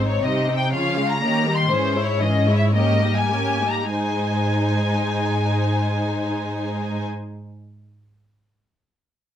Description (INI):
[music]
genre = quick classical-period movement for string orchestra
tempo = 98-122 BPM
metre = 2/4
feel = rubato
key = Ab major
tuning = A4 = 440 Hz
[part]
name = rich symphonic violin section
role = melody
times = 0.0-7.1 s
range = C5 to C6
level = -24 LUFS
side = left 3 dB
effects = none
[part]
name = clear symphonic violin section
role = second line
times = 0.0-7.0 s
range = C4 to F5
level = -28 LUFS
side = left 3 dB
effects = none
[part]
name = rich symphonic viola section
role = accompaniment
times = 0.0-7.0 s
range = Fb3 to F4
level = -26 LUFS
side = right 2 dB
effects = none
[part]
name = rich symphonic cello section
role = bass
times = 0.0-7.0 s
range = Ab2 to Eb3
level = -23 LUFS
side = equal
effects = none
[sound]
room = light reverb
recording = close, detailed microphones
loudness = -19 LUFS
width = side -10 dB against mid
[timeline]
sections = 0.0-3.9 A section; 3.9-6.3 B section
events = slowing down 1.2-3.9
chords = 0.2 Cm; 0.7 Db; 1.2 Eb7; 1.7 Dbm/Ab; 2.7 Eb7/Ab; 3.9 Ab